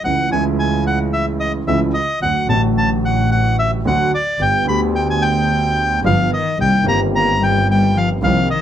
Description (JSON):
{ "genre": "tango", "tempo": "110 BPM", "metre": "4/4", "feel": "rubato", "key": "unclear", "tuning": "A4 = 443 Hz", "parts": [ { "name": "bandoneon", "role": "melody", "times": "0.0-8.6 s", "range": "D5 to B5", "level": "-18 LUFS", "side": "equal", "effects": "none" }, { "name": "dark baby grand piano", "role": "accompaniment", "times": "0.0-8.5 s", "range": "G1 to G4", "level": "-20 LUFS", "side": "equal", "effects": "none" }, { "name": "rich double bass", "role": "bass", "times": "0.0-8.4 s", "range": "G1 to D2", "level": "-20 LUFS", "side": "right 2 dB", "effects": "none" }, { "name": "dark cello", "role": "second line", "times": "6.0-8.6 s", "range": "Eb3 to Bb3", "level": "-19 LUFS", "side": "left 4 dB", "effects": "none" } ], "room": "moderate club reverb, RT60 0.7 s", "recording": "none", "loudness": "-14 LUFS", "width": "side -10 dB against mid", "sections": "0.0-8.6 A section", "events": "none", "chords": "0.0 A/C#; 2.2 D; 4.4 G; 6.6 Cm7" }